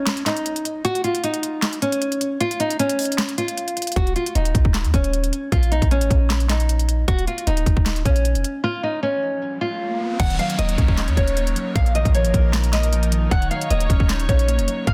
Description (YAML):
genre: hip hop, trap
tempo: 154 BPM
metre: 4/4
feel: half-time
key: Eb minor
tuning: A4 = 440 Hz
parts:
  - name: nylon-string guitar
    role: melody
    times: 0.0-14.9 s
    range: Db4 to Gb5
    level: -26 LUFS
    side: equal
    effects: low-pass filter, digital delay
  - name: trap drum kit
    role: drums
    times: 0.1-14.9 s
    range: crash cymbal, handclaps, hi-hat, kick drum, snare drum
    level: -24 LUFS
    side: equal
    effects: none
  - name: clean 808-style bass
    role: bass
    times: 4.0-14.9 s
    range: Eb1 to Eb2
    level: -22 LUFS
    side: equal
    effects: none
  - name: riser and downlifter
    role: sound effects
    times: 9.2-13.3 s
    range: none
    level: -36 LUFS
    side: equal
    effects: none
  - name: mellow electric guitar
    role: accompaniment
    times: 10.2-14.9 s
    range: Bb2 to Eb4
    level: -30 LUFS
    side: equal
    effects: low-pass filter
  - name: dark studio string section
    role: sustained chords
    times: 10.2-14.9 s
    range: F3 to Db5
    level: -34 LUFS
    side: equal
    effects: none
room: little or no reverb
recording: dense, heavily limited modern master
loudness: -20 LUFS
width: mono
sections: 0.0-10.2 A section; 10.2-14.9 B section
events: break 0.0-4.0, 8.6-10.2; riser 9.2-10.2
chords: 0.0 N.C.; 4.0 Eb5; 5.5 Bbsus4; 7.1 Eb5; 8.6 N.C.; 10.2 Ebm7; 11.8 Bbsus4; 13.3 Ebm7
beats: 0.07 0.46 | 0.85 1.24 1.62 2.02 | 2.40 2.79 3.18 3.57 | 3.96 4.35 4.74 5.13 | 5.52 5.91 6.30 6.69 | 7.08 7.47 7.86 8.25 | 8.64 9.03 9.42 9.81 | 10.20 10.59 10.98 11.37 | 11.76 12.14 12.53 12.92 | 13.31 13.70 14.09 14.48 | 14.87